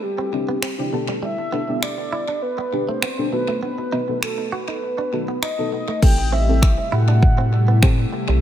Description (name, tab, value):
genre	dance-pop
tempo	100 BPM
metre	4/4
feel	straight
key	unclear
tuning	A4 = 443 Hz
part	mellow horn-like synth lead	melody	0.0-8.1 s	G4 to G5	-26 LUFS	equal	chorus, tape echo
part	direct-recorded clean electric guitar	riff	0.2-8.4 s	G3 to F#4	-30 LUFS	right 4 dB	lush chorus, tape echo
part	deep mellow chord stab	accompaniment	0.3-8.2 s	B3 to B4	-26 LUFS	left 1 dB	chorus, phaser, sidechain pumping, tape echo
part	deep house drum kit	drums	0.6-8.0 s	crash cymbal, finger snaps, kick drum	-20 LUFS	equal	tape echo
part	airy breathy pad	sustained chords	6.0-8.4 s	C3 to G4	-28 LUFS	left 1 dB	chorus, sidechain pumping
part	saturated sub bass	bass	6.0-8.4 s	A1 to A2	-17 LUFS	equal	sidechain pumping
room	light reverb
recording	echo-heavy mix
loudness	-18 LUFS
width	side -11 dB against mid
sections	0.0-6.0 A section; 6.0-8.4 B section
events	none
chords	0.0 Cadd9; 0.9 Gadd9; 3.3 B7; 6.0 Am7